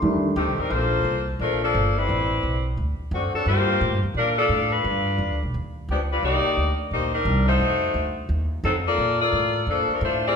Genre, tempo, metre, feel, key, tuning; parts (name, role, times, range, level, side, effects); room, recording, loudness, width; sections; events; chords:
jazz, big band swing; 174 BPM; 4/4; swing 63% on 8ths; Bb major; A4 = 439 Hz
upright bass; bass; 0.0-10.3 s; G1 to Bb2; -25 LUFS; right 1 dB
warm saxophone section; melody; 0.4-10.4 s; D3 to D5; -22 LUFS; left 2 dB
wet recital hall reverb, RT60 1.3 s; recorded in a church or concert hall; -20 LUFS; side -6 dB against mid
0.7-10.4 A section
0.0 F13; 0.7 Bbmaj7; 2.1 Am9; 2.8 D7; 3.5 Gm7; 4.8 G7b13; 6.2 Cm9; 7.6 F7b9; 9.0 Bbmaj7